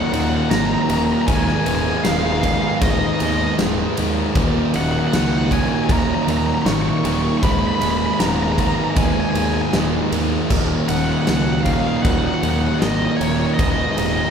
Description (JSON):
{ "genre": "post-rock", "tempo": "78 BPM", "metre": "4/4", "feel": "straight", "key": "Eb minor", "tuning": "A4 = 440 Hz", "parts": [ { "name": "cranked stack guitar", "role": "melody", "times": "0.0-14.3 s", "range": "Db5 to Db6", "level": "-24 LUFS", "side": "equal", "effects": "overdrive" }, { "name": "lush unison pad", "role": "sustained chords", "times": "0.0-14.3 s", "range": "Gb3 to Bb4", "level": "-30 LUFS", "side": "equal", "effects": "none" }, { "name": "sludgy distorted guitar", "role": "riff", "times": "0.0-14.3 s", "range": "Eb2 to Ab3", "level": "-23 LUFS", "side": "right 6 dB", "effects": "overdrive" }, { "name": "thick fuzz guitar", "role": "riff", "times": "0.0-14.3 s", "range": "Eb2 to Ab3", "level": "-22 LUFS", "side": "left 4 dB", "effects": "distortion" }, { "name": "fuzz fingered electric bass", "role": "bass", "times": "0.1-14.2 s", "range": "Eb1 to Eb2", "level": "-24 LUFS", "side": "right 1 dB", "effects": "overdrive" }, { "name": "huge arena drum kit", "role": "drums", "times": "0.1-14.2 s", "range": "crash cymbal, kick drum, ride cymbal, snare drum", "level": "-23 LUFS", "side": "equal", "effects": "none" } ], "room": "wet recital hall reverb, RT60 1.6 s", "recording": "recorded in a church or concert hall", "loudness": "-16 LUFS", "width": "side -7 dB against mid", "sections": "0.0-14.3 A section", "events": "none", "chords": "0.0 Ebm; 1.3 Abmadd9/Eb; 4.3 Ebm; 7.4 Abmadd9/Eb; 10.5 Ebm; 13.6 Abmadd9/Eb" }